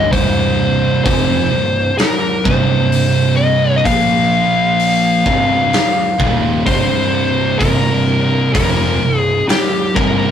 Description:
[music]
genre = stoner and doom metal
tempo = 64 BPM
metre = 4/4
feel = straight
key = C minor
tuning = A4 = 440 Hz
[part]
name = fuzz lead guitar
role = melody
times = 0.0-10.3 s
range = G4 to F5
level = -16 LUFS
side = left 2 dB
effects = distortion
[part]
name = thick fuzz guitar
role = riff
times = 0.0-10.3 s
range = C2 to Bb3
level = -16 LUFS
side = right 2 dB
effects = distortion
[part]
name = fuzz fingered electric bass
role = bass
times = 0.0-10.3 s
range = C1 to Bb1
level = -20 LUFS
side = equal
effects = overdrive, tube saturation
[part]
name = big rock drum kit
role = drums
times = 0.1-10.2 s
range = hi-hat, kick drum, snare drum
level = -19 LUFS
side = equal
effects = none
[sound]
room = light reverb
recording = rough rehearsal-room recording, warm saturation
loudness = -12 LUFS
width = side -9 dB against mid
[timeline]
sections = 0.1-10.3 A section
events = none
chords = 0.1 C5; 3.9 Bb5; 5.3 Cm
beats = | 0.12 1.05 1.98 2.92 | 3.85 4.79 5.73 6.67 | 7.61 8.55 9.49

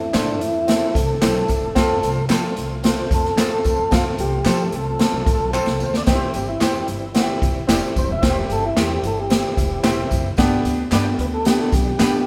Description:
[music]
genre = uptempo 1960s-style soul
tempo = 111 BPM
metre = 4/4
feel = straight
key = C major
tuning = A4 = 443 Hz
[part]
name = tonewheel organ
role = melody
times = 0.0-12.3 s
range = D4 to E5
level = -26 LUFS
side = equal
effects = overdrive, slow rotary speaker
[part]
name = clear grand piano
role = accompaniment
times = 0.0-12.3 s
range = B3 to A4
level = -27 LUFS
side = equal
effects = none
[part]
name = tonewheel organ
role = sustained chords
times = 0.0-12.3 s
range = D3 to F4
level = -36 LUFS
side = equal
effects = none
[part]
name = upright bass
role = bass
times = 0.0-12.1 s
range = Eb1 to F3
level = -29 LUFS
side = equal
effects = none
[part]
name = electric guitar through a small old amp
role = stabs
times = 0.1-12.1 s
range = D4 to C5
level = -30 LUFS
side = equal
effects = tube saturation
[part]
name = swinging big-band drum kit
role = drums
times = 0.1-12.1 s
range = hi-hat, kick drum, snare drum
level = -23 LUFS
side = equal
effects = none
[part]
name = handclaps and tambourine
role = percussion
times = 0.1-12.1 s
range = none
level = -36 LUFS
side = equal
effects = none
[sound]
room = moderate studio reverb, RT60 0.7 s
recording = band playing live in one room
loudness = -19 LUFS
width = mono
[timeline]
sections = 0.0-12.3 A section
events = tonewheel organ solo 0.0-12.3; drum fill 5.5-6.1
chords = 0.0 Am; 1.8 F; 6.1 C; 10.4 G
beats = 0.14 0.68 1.22 | 1.76 2.30 2.84 3.38 | 3.92 4.46 5.00 5.54 | 6.08 6.61 7.15 7.69 | 8.23 8.77 9.30 9.84 | 10.38 10.92 11.46 11.99

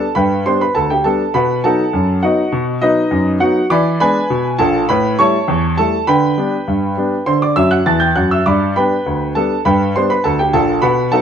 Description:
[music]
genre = ragtime piano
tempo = 101 BPM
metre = 2/4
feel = straight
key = G major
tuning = A4 = 441 Hz
[part]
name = clear grand piano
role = solo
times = 0.0-11.2 s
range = Bb1 to A6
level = -12 LUFS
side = equal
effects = none
[sound]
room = moderate studio reverb, RT60 0.9 s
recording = band playing live in one room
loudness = -12 LUFS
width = side -8 dB against mid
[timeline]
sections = 0.0-11.2 A section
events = grand piano fill 7.6-8.5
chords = 0.0 G; 1.3 B7; 3.7 E7; 4.9 A7; 6.1 G/D; 7.3 D; 8.5 G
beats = | 0.16 0.75 | 1.34 1.94 | 2.53 3.12 | 3.71 4.29 | 4.88 5.48 | 6.07 6.67 | 7.27 7.86 | 8.46 9.05 | 9.65 10.24 | 10.84

